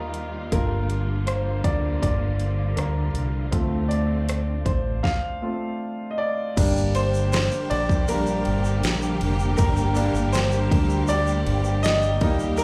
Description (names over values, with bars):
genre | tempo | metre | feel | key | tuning
pop ballad | 80 BPM | 4/4 | straight | G minor | A4 = 441 Hz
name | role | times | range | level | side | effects
clear concert grand piano | accompaniment | 0.0-12.6 s | G3 to F5 | -28 LUFS | equal | plate reverb
rich studio string section | sustained chords | 0.0-12.6 s | Bb2 to G4 | -32 LUFS | equal | plate reverb
mellow fretless electric bass | bass | 0.0-12.6 s | F1 to Eb2 | -27 LUFS | equal | ensemble chorus
pop drum kit | drums | 0.1-12.6 s | crash cymbal, hi-hat, kick drum, ride cymbal, rim click, snare drum | -28 LUFS | equal | none
egg shaker | percussion | 6.6-12.6 s | none | -43 LUFS | equal | none
room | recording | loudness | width
moderate club reverb, RT60 0.7 s | live gig heard through the venue's PA, club reverb | -23 LUFS | mono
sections
0.0-6.6 A section; 6.6-12.6 B section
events
grand piano solo 0.0-6.6, 6.6-12.6; stop 5.0-6.6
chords
0.0 Ebadd9; 0.5 Gm7; 3.5 Dm7; 6.6 Gm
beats
| 0.52 1.27 2.02 2.77 | 3.52 4.28 5.04 5.81 | 6.57 7.33 8.09 8.84 | 9.59 10.34 11.09 11.84 | 12.59